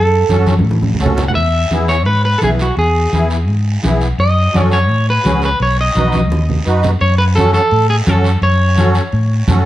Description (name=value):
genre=latin, cumbia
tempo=170 BPM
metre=4/4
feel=straight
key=unclear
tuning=A4 = 440 Hz
part: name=electric guitar at the edge of break-up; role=melody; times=0.0-9.6 s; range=F#4 to F#5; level=-16 LUFS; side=equal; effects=spring reverb
part: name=fingered electric bass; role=bass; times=0.0-9.7 s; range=B1 to A2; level=-14 LUFS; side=equal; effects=none
part: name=musette accordion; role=accompaniment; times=0.3-9.7 s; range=B3 to B4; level=-20 LUFS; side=equal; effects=none
part: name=congas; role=percussion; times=0.3-9.7 s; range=none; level=-19 LUFS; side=equal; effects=none
part: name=guiro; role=percussion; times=0.3-9.7 s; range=none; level=-29 LUFS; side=right 2 dB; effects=none
room=moderate studio reverb, RT60 0.9 s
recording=dark, warm production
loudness=-11 LUFS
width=side -14 dB against mid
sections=0.0-7.0 A section; 7.0-9.7 B section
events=drum fill 0.5-1.4, 6.1-7.0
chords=0.0 F#m; 1.4 E; 4.2 F#m; 5.6 B; 7.0 F#m